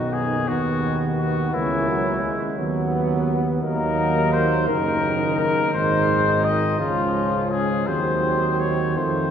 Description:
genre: classical, brass quintet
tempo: 57 BPM (dotted quarters)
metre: 6/8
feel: rubato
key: unclear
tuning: A4 = 440 Hz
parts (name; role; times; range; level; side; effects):
- mellow trumpet; melody; 0.0-9.3 s; Fb4 to Eb5; -24 LUFS; left 4 dB; none
- mellow flugelhorn; second line; 0.0-9.3 s; A3 to Eb4; -28 LUFS; right 2 dB; none
- bright trombone; accompaniment; 0.0-9.3 s; Eb3 to Ab3; -28 LUFS; right 2 dB; none
- mellow French horn; accompaniment; 0.0-9.3 s; F3 to B3; -27 LUFS; left 1 dB; none
- mellow tuba; bass; 0.0-9.3 s; Gb1 to F2; -25 LUFS; right 2 dB; none
room: wet cathedral reverb, RT60 5.5 s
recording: heard from further back in the room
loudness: -19 LUFS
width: side -8 dB against mid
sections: 0.0-9.3 A section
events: none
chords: 0.0 B; 1.5 Gb7/Db; 2.6 B/D#; 3.6 Ebm; 5.7 Ab; 6.8 Db; 7.9 Cdim/Eb

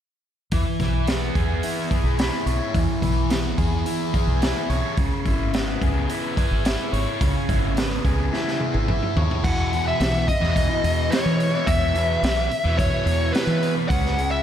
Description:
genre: psychedelic rock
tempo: 108 BPM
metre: 4/4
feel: straight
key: E major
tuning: A4 = 441 Hz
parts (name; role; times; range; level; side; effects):
- fuzz guitar; riff; 0.5-14.4 s; E2 to C#5; -25 LUFS; left 1 dB; distortion, phaser
- deep dub fingered electric bass; bass; 0.5-14.4 s; G#1 to E3; -24 LUFS; equal; none
- raw garage drum kit; drums; 0.5-14.3 s; crash cymbal, hi-hat, kick drum, snare drum, toms; -25 LUFS; equal; none
- fuzz lead guitar; melody; 9.4-14.4 s; B4 to F#5; -24 LUFS; left 1 dB; distortion, analog delay
room: light reverb, small room ambience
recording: none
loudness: -20 LUFS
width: side -10 dB against mid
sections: 0.5-9.4 A section; 9.4-14.4 B section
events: drum fill 8.3-9.4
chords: 0.5 E6; 5.0 C#m7; 9.4 E5; 13.9 C#m

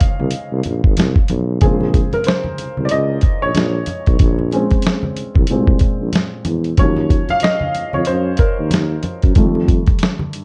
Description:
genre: R&B, neo-soul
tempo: 93 BPM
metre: 4/4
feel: swing 59% on 16ths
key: unclear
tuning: A4 = 440 Hz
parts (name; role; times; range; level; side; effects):
- warm upright piano; accompaniment; 0.0-10.4 s; Bb2 to F5; -23 LUFS; equal; none
- mellow tuba; bass; 0.0-10.4 s; Ab1 to G2; -22 LUFS; equal; none
- dusty soul sampler-style drum kit; drums; 0.0-10.4 s; hi-hat, kick drum, snare drum; -17 LUFS; equal; vintage 12-bit sampler grit
- congas; percussion; 0.0-10.3 s; none; -28 LUFS; equal; none
room: light reverb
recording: dark, warm production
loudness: -16 LUFS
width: mono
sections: 0.0-1.6 A section; 1.6-10.4 B section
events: upright piano solo 0.0-1.6, 1.6-10.4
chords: 0.0 Bbm9 (rootless); 1.6 Bbm9; 6.8 Ebm9; 9.4 F7

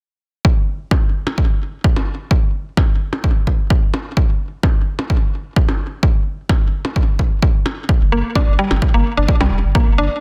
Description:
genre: minimal techno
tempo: 129 BPM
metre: 4/4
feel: straight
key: G minor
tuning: A4 = 440 Hz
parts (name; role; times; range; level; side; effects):
- electronic kick drum; drums; 0.4-9.8 s; none; -17 LUFS; equal; none
- percussion blips; percussion; 0.9-9.5 s; none; -27 LUFS; equal; digital delay
- round analog bass; bass; 8.0-10.1 s; F1 to C2; -20 LUFS; equal; sidechain pumping
- mallet-like synth pluck; riff; 8.1-10.0 s; G3 to D4; -22 LUFS; equal; chorus, sidechain pumping, digital delay
room: little or no reverb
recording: dense, heavily limited modern master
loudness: -17 LUFS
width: mono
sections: 0.4-10.2 A section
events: none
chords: none

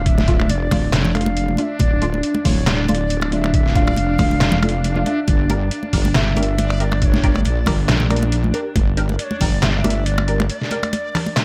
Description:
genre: deep dubstep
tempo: 138 BPM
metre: 4/4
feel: swing 55% on 16ths, half-time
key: D harmonic minor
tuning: A4 = 441 Hz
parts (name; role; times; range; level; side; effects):
- breathy bright ney; melody; 0.0-11.4 s; C#5 to F5; -30 LUFS; equal; dub echo
- dark analog pad; sustained chords; 0.0-11.4 s; D4 to D5; -31 LUFS; equal; lush chorus
- wobble bass; bass; 0.0-10.5 s; D1 to Bb1; -22 LUFS; equal; chorus
- backwards swelling texture; texture; 0.1-11.4 s; D4; -32 LUFS; equal; built-in reverb
- electronic kick drum; drums; 0.1-9.5 s; none; -21 LUFS; equal; small room ambience
- trip hop sampler-style drum kit; drums; 0.1-11.4 s; finger snaps, handclaps, hi-hat, snare drum; -25 LUFS; equal; small room ambience
- congas; percussion; 0.2-11.3 s; none; -26 LUFS; equal; none
- filtered dub chord stab; stabs; 0.3-11.2 s; A3 to Bb4; -30 LUFS; equal; phaser, ensemble chorus, dub echo
room: light reverb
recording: vinyl crackle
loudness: -18 LUFS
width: mono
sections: 0.0-11.4 A section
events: break 10.5-11.4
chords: 0.0 Dm; 5.3 Gm

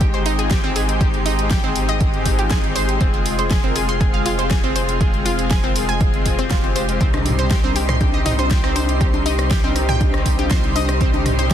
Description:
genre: progressive house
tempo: 120 BPM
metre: 4/4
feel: straight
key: C minor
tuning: A4 = 440 Hz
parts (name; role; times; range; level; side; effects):
- shimmering ambient pad; sustained chords; 0.0-11.5 s; G4 to C6; -27 LUFS; right 1 dB; chorus, built-in reverb, sidechain pumping
- analog pluck; arpeggios; 0.0-11.5 s; C4 to C6; -24 LUFS; right 1 dB; chorus, sidechain pumping, digital delay
- soft supersaw; stabs; 0.0-11.5 s; Ab2 to Bb4; -24 LUFS; left 4 dB; sidechain pumping, digital delay
- round analog bass; bass; 0.0-11.5 s; F1 to C2; -23 LUFS; equal; sidechain pumping
- deep house drum kit; drums; 0.0-11.5 s; hi-hat, snare drum; -27 LUFS; equal; overdrive
- electronic kick drum; drums; 0.0-11.5 s; none; -19 LUFS; equal; overdrive
- punchy analog drum machine; percussion; 7.1-11.4 s; congas, rim click, toms; -25 LUFS; left 1 dB; sidechain pumping on perc, sidechain pumping on toms, soft clipping on snare, sidechain pumping on snare
room: light reverb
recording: dense, heavily limited modern master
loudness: -16 LUFS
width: side -10 dB against mid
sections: 0.0-11.5 A section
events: none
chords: 0.0 Abmaj7; 3.0 Fm; 7.0 Cm

